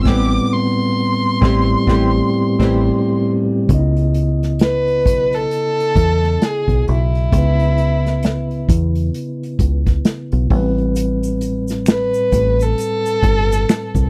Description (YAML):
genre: R&B, neo-soul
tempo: 66 BPM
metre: 4/4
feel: swing 59% on 16ths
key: C# minor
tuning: A4 = 442 Hz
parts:
  - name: dark violin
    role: melody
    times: 0.0-14.1 s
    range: E4 to E6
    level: -22 LUFS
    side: equal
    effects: slapback echo
  - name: mellow tine electric piano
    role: accompaniment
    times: 0.0-14.1 s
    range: A2 to D#5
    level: -22 LUFS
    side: equal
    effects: none
  - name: deep dub fingered electric bass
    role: bass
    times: 0.0-14.1 s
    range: G1 to E2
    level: -20 LUFS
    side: equal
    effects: tube saturation
  - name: warm horn section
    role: stabs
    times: 0.1-2.8 s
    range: E3 to G4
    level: -30 LUFS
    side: equal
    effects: slapback echo
  - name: unplugged drum kit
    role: drums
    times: 0.1-14.1 s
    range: crash cymbal, hi-hat, kick drum, snare drum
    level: -20 LUFS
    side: equal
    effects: none
  - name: tube shaker and finger snaps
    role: percussion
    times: 11.0-14.1 s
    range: none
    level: -35 LUFS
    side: equal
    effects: none
room: little or no reverb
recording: dry, close 1970s-style studio recording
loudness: -17 LUFS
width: mono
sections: 0.0-3.7 A section; 3.7-14.1 B section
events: band accent 0.1-3.7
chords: 0.0 Am9; 3.7 C#m9; 10.5 Am9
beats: | 0.05 0.96 1.87 2.78 | 3.69 4.60 5.51 6.42 | 7.33 8.24 9.14 10.05 | 10.96 11.87 12.78 13.69